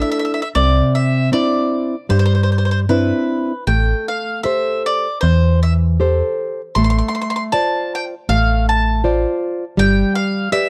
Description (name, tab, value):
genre	italian folk, Italian serenade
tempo	78 BPM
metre	4/4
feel	rubato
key	C major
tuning	A4 = 440 Hz
part	bowl-back mandolin	melody	0.0-10.7 s	B4 to C6	-23 LUFS	equal	none
part	nylon-string guitar	accompaniment	0.0-10.7 s	C3 to D5	-21 LUFS	equal	none
part	metallic FM bass	bass	0.0-10.0 s	G1 to G2	-18 LUFS	equal	none
room	studio ambience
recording	dry, close 1970s-style studio recording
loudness	-17 LUFS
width	mono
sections	0.0-10.7 A section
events	none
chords	0.0 Dsus2; 0.6 Cadd9; 3.7 Am7; 6.8 Dm7/A; 9.8 G